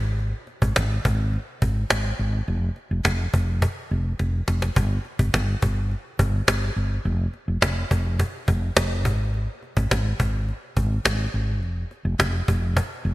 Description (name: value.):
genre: 1980s-style pop.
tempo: 105 BPM.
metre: 4/4.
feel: straight.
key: F minor.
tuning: A4 = 438 Hz.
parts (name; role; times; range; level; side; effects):
woody fretless electric bass; bass; 0.0-13.1 s; F1 to Ab1; -23 LUFS; equal; none.
cajon; drums; 0.2-13.1 s; none; -24 LUFS; equal; none.
room: light reverb, studio reverb.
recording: bright 1980s-style digital production.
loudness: -21 LUFS.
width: side -18 dB against mid.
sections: 0.0-13.1 A section.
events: drum fill 4.2-4.8.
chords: none.